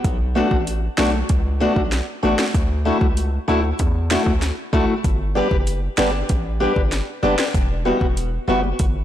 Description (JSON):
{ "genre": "dancehall", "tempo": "96 BPM", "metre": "4/4", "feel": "straight", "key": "B minor", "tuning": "A4 = 441 Hz", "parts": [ { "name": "hard-hitting 808-style bass", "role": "bass", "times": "0.0-9.0 s", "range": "E1 to E2", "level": "-23 LUFS", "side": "equal", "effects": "none" }, { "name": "afro-pop drum kit", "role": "drums", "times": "0.0-8.9 s", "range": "hi-hat, kick drum, rim click, snare drum", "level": "-21 LUFS", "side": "equal", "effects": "overdrive" }, { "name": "tonewheel organ", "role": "accompaniment", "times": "0.4-8.6 s", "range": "G3 to G4", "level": "-25 LUFS", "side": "right 3 dB", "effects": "overdrive, slow rotary speaker" }, { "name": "fingerpicked steel-string acoustic guitar", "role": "arpeggios", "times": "0.4-8.7 s", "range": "G3 to B4", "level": "-22 LUFS", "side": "left 4 dB", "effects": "tape echo" } ], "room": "light reverb", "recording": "blown-out, overdriven recording, overdrive", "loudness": "-17 LUFS", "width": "side -11 dB against mid", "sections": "0.0-9.0 A section", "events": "none", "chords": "0.0 Bm7; 2.5 Dadd9; 5.0 G; 7.5 Emadd9" }